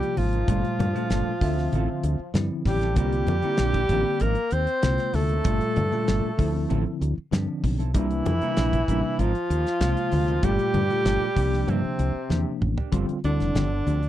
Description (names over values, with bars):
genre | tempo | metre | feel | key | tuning
electric jazz fusion | 96 BPM | 4/4 | straight | C mixolydian | A4 = 441 Hz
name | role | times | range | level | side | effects
breathy alto saxophone | melody | 0.0-14.1 s | C4 to C5 | -28 LUFS | right 3 dB | slapback echo
brilliant trombone | second line | 0.0-14.1 s | C3 to C4 | -32 LUFS | left 13 dB | none
bell-like tine electric piano | accompaniment | 0.0-13.8 s | Bb2 to E5 | -29 LUFS | left 1 dB | fast stereo tremolo
mellow electric guitar | stabs | 0.0-14.1 s | F3 to Bb4 | -34 LUFS | right 13 dB | wide subtle chorus
damped 70s drum kit | drums | 0.0-14.1 s | hi-hat, kick drum, snare drum, toms | -26 LUFS | equal | none
woody fretless electric bass | bass | 0.2-14.1 s | F1 to G2 | -25 LUFS | equal | none
congas | percussion | 0.2-14.0 s | none | -33 LUFS | left 4 dB | none
room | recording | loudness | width
little or no reverb | dry, close 1970s-style studio recording | -22 LUFS | side -12 dB against mid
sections
0.0-12.9 A section; 12.9-14.1 B section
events
drum fill 12.3-12.9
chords
0.5 Gm9; 1.4 Dm9; 3.0 C9sus4; 4.2 Ab69; 5.5 Gm9; 6.4 Dm9; 8.0 C9sus4; 9.2 Ab69; 10.4 Gm9; 11.4 C9sus4; 12.9 G7sus4